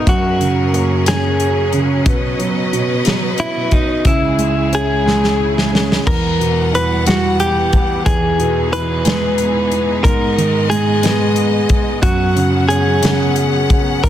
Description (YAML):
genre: six-eight pop ballad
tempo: 60 BPM (dotted quarters)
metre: 6/8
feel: straight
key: B major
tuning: A4 = 440 Hz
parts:
  - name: direct-recorded clean electric guitar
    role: melody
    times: 0.0-14.1 s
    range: D#4 to B4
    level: -18 LUFS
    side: left 1 dB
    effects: none
  - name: warm grand piano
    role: accompaniment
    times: 0.0-14.1 s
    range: E2 to C#4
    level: -18 LUFS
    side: right 3 dB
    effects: none
  - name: bright studio string section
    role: sustained chords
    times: 0.0-14.1 s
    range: C#2 to F#5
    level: -21 LUFS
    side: left 1 dB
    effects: none
  - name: modern studio drum kit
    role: drums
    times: 0.1-14.1 s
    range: crash cymbal, hi-hat, kick drum, snare drum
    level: -17 LUFS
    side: left 1 dB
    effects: none
room: light reverb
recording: dense, heavily limited modern master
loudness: -13 LUFS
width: side -11 dB against mid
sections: 0.0-6.1 A section; 6.1-14.1 B section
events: drum fill 5.1-6.1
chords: 0.1 F#add9; 2.1 Badd9; 4.1 C#m; 6.1 Emadd9; 8.1 Emaj7; 10.0 G#m; 12.0 Bsus2/F#